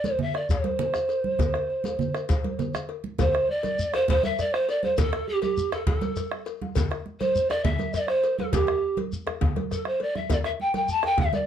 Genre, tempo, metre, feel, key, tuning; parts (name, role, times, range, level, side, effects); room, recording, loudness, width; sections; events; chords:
west african traditional, West African drum ensemble; 135 BPM (dotted quarters); 12/8; straight; C major pentatonic; A4 = 441 Hz
mellow pan flute; melody; 0.0-11.5 s; G4 to A5; -25 LUFS; right 1 dB
congas; percussion; 0.0-11.5 s; -32 LUFS; right 5 dB
cowbell; percussion; 0.0-11.5 s; -35 LUFS; left 10 dB
djembe; percussion; 0.0-11.3 s; -33 LUFS; left 6 dB
shekere; percussion; 0.0-11.4 s; -34 LUFS; left 2 dB
bombo; percussion; 0.3-11.3 s; -27 LUFS; right 1 dB
moderate studio ambience, RT60 0.5 s; dark, warm production; -23 LUFS; side -9 dB against mid
0.0-3.2 A section; 3.2-11.5 B section